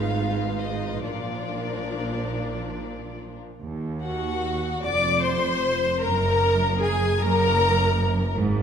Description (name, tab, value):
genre	classical, slow romantic movement for string orchestra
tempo	45-53 BPM (dotted quarters)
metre	6/8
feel	rubato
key	unclear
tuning	A4 = 440 Hz
part	rich chamber violin section	melody	0.0-8.4 s	D5 to D6	-29 LUFS	left 6 dB	none
part	rich chamber violin section	second line	0.0-8.3 s	F4 to D5	-28 LUFS	left 2 dB	none
part	clear studio viola section	accompaniment	0.0-8.3 s	F3 to D5	-29 LUFS	equal	none
part	rich chamber cello section	bass	0.0-8.6 s	Eb2 to Bb2	-29 LUFS	right 3 dB	none
part	warm chamber double bass section	bass	0.0-8.6 s	F1 to Eb2	-29 LUFS	right 3 dB	none
room	wet recital hall reverb, RT60 1.7 s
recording	minimal, uncompressed stereo recording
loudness	-21 LUFS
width	side -8 dB against mid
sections	0.0-3.6 A section; 3.6-8.6 B section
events	none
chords	0.0 Fm7b5/Ab; 1.0 Bb; 3.6 Ebm; 4.8 Dm7/F; 6.0 Gbadd9